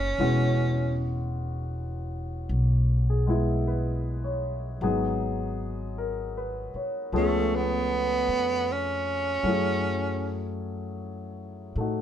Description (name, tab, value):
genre	jazz ballad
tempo	52 BPM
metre	4/4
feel	swing 66% on 8ths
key	unclear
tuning	A4 = 441 Hz
part	breathy tenor saxophone	melody	0.0-10.5 s	A3 to C#4	-27 LUFS	right 3 dB	none
part	warm grand piano	accompaniment	0.0-12.0 s	D#3 to C#5	-30 LUFS	left 2 dB	none
part	upright bass	bass	0.0-12.0 s	E1 to A2	-28 LUFS	equal	none
room	moderate studio reverb, RT60 0.7 s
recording	band playing live in one room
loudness	-25 LUFS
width	side -10 dB against mid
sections	0.0-12.0 A section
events	tenor saxophone solo 0.0-12.0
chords	0.2 E69; 4.8 G#m7; 7.1 C#7b13; 9.4 F#m9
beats	| 0.18 1.33 2.49 3.65 | 4.81 5.97 7.13 8.29 | 9.45 10.61 11.76